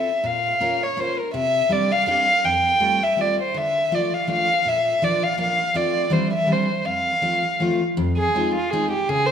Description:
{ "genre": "musette waltz", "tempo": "164 BPM", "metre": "3/4", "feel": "swing 53% on 8ths, rubato", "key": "F major", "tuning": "A4 = 440 Hz", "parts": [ { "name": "dark violin", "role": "melody", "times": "0.0-9.3 s", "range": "F4 to G5", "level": "-20 LUFS", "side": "equal", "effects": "none" }, { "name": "picked steel-string acoustic guitar", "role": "accompaniment", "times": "0.0-9.3 s", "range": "F2 to Bb4", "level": "-24 LUFS", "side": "left 1 dB", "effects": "none" } ], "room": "wet recital hall reverb, RT60 1.7 s", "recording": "minimal, uncompressed stereo recording", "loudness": "-18 LUFS", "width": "side -8 dB against mid", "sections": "0.0-8.0 A section; 8.0-9.3 B section", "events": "none", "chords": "0.3 Bbm; 1.3 Csus2; 2.4 Fadd9; 3.5 Dm; 4.7 Bb; 5.8 F; 6.1 Cadd9; 6.9 F; 8.0 Fm7" }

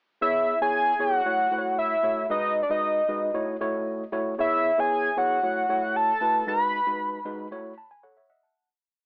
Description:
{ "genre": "funk", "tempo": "115 BPM", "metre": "4/4", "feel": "straight", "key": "unclear", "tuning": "A4 = 438 Hz", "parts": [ { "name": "fat analog lead", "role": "melody", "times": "0.2-7.5 s", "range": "D5 to B5", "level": "-26 LUFS", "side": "equal", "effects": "chorus" }, { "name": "tine electric piano", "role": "accompaniment", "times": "0.2-8.7 s", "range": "G#3 to A5", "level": "-32 LUFS", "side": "equal", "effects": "overdrive, cassette tape" } ], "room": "light reverb", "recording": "home recording on cassette, AM radio sound", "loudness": "-25 LUFS", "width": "mono", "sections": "0.2-8.6 verse", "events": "fade-out 6.5-8.6; tine electric piano fill 7.5-8.6", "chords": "0.2 C#m7; 1.3 F#m7; 2.3 G#m7; 3.3 F#m7; 4.4 C#m7; 5.4 F#m7; 6.5 G#m7; 7.5 F#m7" }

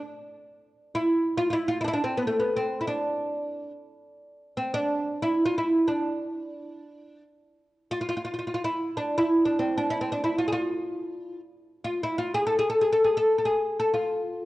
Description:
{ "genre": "Turkish makam ensemble", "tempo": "free time", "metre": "none", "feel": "none", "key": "D makam nikriz", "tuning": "A4 = 440 Hz", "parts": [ { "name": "oud", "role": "solo", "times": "0.9-14.5 s", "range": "A3 to A4", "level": "-24 LUFS", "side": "equal", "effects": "none" } ], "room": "light reverb", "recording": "worn, warbling old tape, cassette tape, warbly pitch drift, nothing above 11.0 kHz", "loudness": "-24 LUFS", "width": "side -17 dB against mid", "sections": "0.0-14.5 A section", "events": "none", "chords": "none" }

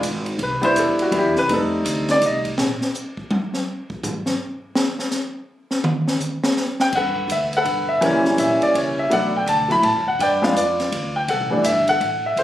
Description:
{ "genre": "jazz piano trio", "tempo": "166 BPM", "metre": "3/4", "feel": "swing 64% on 8ths", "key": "G major", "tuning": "A4 = 441 Hz", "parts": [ { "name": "upright bass", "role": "bass", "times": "0.0-2.8, 6.9-12.4 s", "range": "F#1 to A2", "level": "-29 LUFS", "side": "equal", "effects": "none" }, { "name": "open jazz drum kit", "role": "drums", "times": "0.0-12.4 s", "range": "crash cymbal, hi-hat, kick drum, ride cymbal, snare drum, toms", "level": "-25 LUFS", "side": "equal", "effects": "none" }, { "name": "warm upright piano", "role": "melody", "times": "0.4-2.5, 6.8-12.4 s", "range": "E3 to B5", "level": "-18 LUFS", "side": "equal", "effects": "none" } ], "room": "moderate club reverb, RT60 0.8 s", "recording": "recorded on a phone in the room, club reverb", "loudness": "-18 LUFS", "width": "side -12 dB against mid", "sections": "0.0-6.9 A section; 6.9-12.4 B section", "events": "upright piano solo 0.0-6.9; drum solo 2.6-6.9", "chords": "0.4 Cmaj9; 1.5 F9; 2.6 N.C.; 6.9 Gmaj9; 8.0 F#7b9; 9.1 Bm7; 10.2 G7; 11.3 C6 (rootless)" }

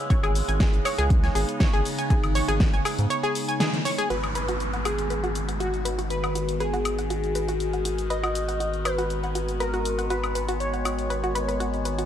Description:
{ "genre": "progressive house", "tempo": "120 BPM", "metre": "4/4", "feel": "straight", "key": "G# minor", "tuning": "A4 = 439 Hz", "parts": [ { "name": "evolving wavetable pad", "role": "sustained chords", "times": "0.0-12.1 s", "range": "C#3 to F#4", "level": "-31 LUFS", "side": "left 2 dB", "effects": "phaser, built-in reverb, sidechain pumping" }, { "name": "analog pluck", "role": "arpeggios", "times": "0.1-12.1 s", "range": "F#4 to G#5", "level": "-30 LUFS", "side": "equal", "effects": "chorus, sidechain pumping, dub echo" }, { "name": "round analog bass", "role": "bass", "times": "0.1-12.1 s", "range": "G#1 to G#2", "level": "-29 LUFS", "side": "equal", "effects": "tube saturation, sidechain pumping" }, { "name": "big-room dance drum kit", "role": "drums", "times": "0.1-12.1 s", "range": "hi-hat, shaker, snare drum, woodblock", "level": "-30 LUFS", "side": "left 1 dB", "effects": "none" }, { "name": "electronic kick drum", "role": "drums", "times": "0.1-2.7 s", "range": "none", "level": "-22 LUFS", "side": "equal", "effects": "overdrive" }, { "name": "plucky unison lead", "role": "melody", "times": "4.1-12.0 s", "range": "F#4 to D#5", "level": "-30 LUFS", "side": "equal", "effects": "dub echo" }, { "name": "downlifter", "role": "sound effects", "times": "4.1-8.1 s", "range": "none", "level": "-35 LUFS", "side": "equal", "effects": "none" } ], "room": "light reverb", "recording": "none", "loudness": "-23 LUFS", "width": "side -10 dB against mid", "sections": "0.0-4.1 A section; 4.1-12.1 B section", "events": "break 3.1-4.1; band accent 3.6", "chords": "0.0 E6/G# (rootless); 4.1 G#m7" }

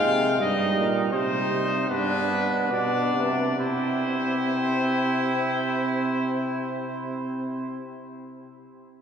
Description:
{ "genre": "classical, imitative canzona for brass ensemble", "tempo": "65-88 BPM", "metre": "4/4", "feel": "straight", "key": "unclear", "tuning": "A4 = 438 Hz", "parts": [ { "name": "bright trumpet", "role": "melody", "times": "0.0-7.8 s", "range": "B4 to F5", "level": "-29 LUFS", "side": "left 3 dB", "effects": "none" }, { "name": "bright trumpet", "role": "second line", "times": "0.0-7.8 s", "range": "D4 to E4", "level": "-31 LUFS", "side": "right 3 dB", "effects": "none" }, { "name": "clear euphonium", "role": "accompaniment", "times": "0.0-7.8 s", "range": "G3 to C4", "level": "-27 LUFS", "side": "equal", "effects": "none" }, { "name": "warm bass trombone", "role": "bass", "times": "0.0-7.8 s", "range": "G2 to C3", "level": "-29 LUFS", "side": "right 2 dB", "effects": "none" } ], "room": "wet cathedral reverb, RT60 5.2 s", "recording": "recorded in a church or concert hall", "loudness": "-22 LUFS", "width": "side -7 dB against mid", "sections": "0.0-3.6 A section; 3.6-7.2 B section", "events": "slowing down 0.0-3.6", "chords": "0.4 Cm/G; 1.9 G; 3.6 C" }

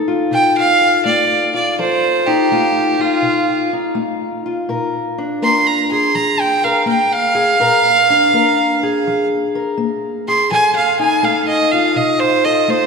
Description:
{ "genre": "acoustic country blues, solo or duo", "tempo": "82 BPM", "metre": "4/4", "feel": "swing 67% on 8ths", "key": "F mixolydian", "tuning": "A4 = 441 Hz", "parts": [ { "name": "fingerpicked steel-string acoustic guitar", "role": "accompaniment", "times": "0.0-12.9 s", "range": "Bb2 to Bb4", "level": "-18 LUFS", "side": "left 3 dB", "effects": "none" }, { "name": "clear fiddle", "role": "melody", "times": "0.3-12.9 s", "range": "F4 to C6", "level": "-14 LUFS", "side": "right 2 dB", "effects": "none" } ], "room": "wet church reverb, RT60 2.8 s", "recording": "recorded in a church or concert hall", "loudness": "-13 LUFS", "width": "side -5 dB against mid", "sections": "0.0-12.9 A section", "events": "fiddle solo 0.0-12.9", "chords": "0.0 F7; 4.7 Bb7; 10.5 F7" }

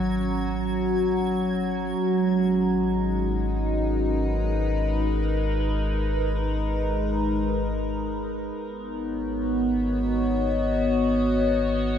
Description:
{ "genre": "ambient", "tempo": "free time", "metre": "none", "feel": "none", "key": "G# minor", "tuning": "A4 = 440 Hz", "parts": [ { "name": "evolving wavetable pad", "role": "sustained chords", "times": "0.0-12.0 s", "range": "F#3 to A#5", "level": "-24 LUFS", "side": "equal", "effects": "chorus, built-in reverb, phaser" }, { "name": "warm sub bass", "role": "bass", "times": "0.0-12.0 s", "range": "G#1", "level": "-29 LUFS", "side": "equal", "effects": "none" }, { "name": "twinkling granular texture", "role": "texture", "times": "0.0-2.0 s", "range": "G#6", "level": "-43 LUFS", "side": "right 2 dB", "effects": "built-in reverb" } ], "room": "wet cathedral reverb, RT60 4.7 s", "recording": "dark, warm production", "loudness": "-22 LUFS", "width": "side -8 dB against mid", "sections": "0.0-2.0 A section; 2.0-12.0 B section", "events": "none", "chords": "0.0 G#m9" }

